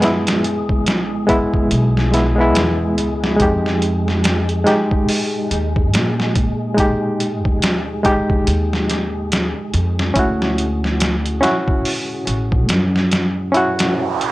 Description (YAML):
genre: trip hop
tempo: 71 BPM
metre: 4/4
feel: swing 59% on 16ths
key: unclear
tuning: A4 = 440 Hz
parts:
  - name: barky reed electric piano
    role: accompaniment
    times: 0.0-14.3 s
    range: G#3 to G4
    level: -19 LUFS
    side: equal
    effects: overdrive, fast tremolo, vintage 12-bit sampler grit, tape echo
  - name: upright bass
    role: bass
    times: 0.0-14.3 s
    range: A1 to A#2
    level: -20 LUFS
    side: equal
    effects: tube saturation
  - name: trip hop sampler-style drum kit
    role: drums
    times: 0.0-14.3 s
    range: hi-hat, kick drum, snare drum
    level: -19 LUFS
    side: equal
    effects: overdrive
  - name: wind-like tuned noise texture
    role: texture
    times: 0.0-14.3 s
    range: G#3 to G#4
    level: -28 LUFS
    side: left 1 dB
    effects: built-in reverb
  - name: noise sweep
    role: sound effects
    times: 13.7-14.3 s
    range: none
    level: -22 LUFS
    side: right 7 dB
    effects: none
room: little or no reverb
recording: dry, gritty hardware recording, cassette tape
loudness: -15 LUFS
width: side -18 dB against mid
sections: 0.0-14.3 A section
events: noise sweep 13.7-14.3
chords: 0.0 C#m7 (rootless); 3.4 Fm7; 10.2 Dmaj7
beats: | 0.02 0.86 1.71 2.55 | 3.40 4.24 5.09 5.93 | 6.78 7.62 8.47 9.31 | 10.16 11.01 11.85 12.70 | 13.54